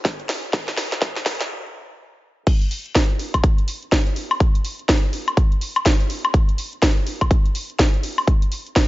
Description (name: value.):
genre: house.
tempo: 124 BPM.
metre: 4/4.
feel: swing 61% on 16ths.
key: none.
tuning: none.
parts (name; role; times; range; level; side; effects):
electronic kick drum; drums; 0.0-8.9 s; none; -17 LUFS; equal; none.
garage drum kit; drums; 0.0-8.9 s; crash cymbal, hi-hat, snare drum, woodblock; -23 LUFS; equal; high-pass filter on hats, high-pass filter on snare, high-pass filter on perc, high-pass filter on cymbals.
room: light reverb, digital ambience.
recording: high-pass filter, nothing above 7.5 kHz.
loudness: -18 LUFS.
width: side -18 dB against mid.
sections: 0.0-2.5 A section; 2.5-8.9 B section.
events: build-up 0.0-2.5; drum fill 0.0-1.5; stop 1.5-2.5; drop 2.5-8.9.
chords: none.